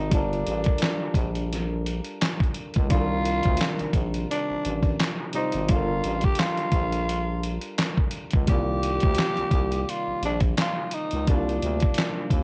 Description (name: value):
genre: lo-fi hip hop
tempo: 86 BPM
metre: 4/4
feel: swing 57% on 16ths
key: C dorian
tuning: A4 = 438 Hz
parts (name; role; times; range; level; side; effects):
- growling tenor saxophone; melody; 0.0-12.4 s; D4 to G4; -31 LUFS; equal; cassette tape, tape echo, plate reverb
- soft electric-piano-like synth keys; accompaniment; 0.0-12.4 s; C3 to D5; -34 LUFS; equal; chorus, plate reverb
- growling FM bass; bass; 0.0-12.4 s; G1 to Eb2; -31 LUFS; equal; none
- dusty soul sampler-style drum kit; drums; 0.1-12.4 s; handclaps, hi-hat, kick drum, snare drum; -27 LUFS; equal; vintage 12-bit sampler grit, cassette tape
room: light reverb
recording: home recording on cassette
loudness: -25 LUFS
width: mono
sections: 0.0-12.4 A section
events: none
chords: 0.1 Gm7; 2.9 Cm11; 5.7 Gm7; 8.5 Cm11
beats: | 0.11 0.81 1.51 2.21 | 2.90 3.60 4.30 5.00 | 5.69 6.39 7.09 7.79 | 8.48 9.18 9.88 10.58 | 11.28 11.97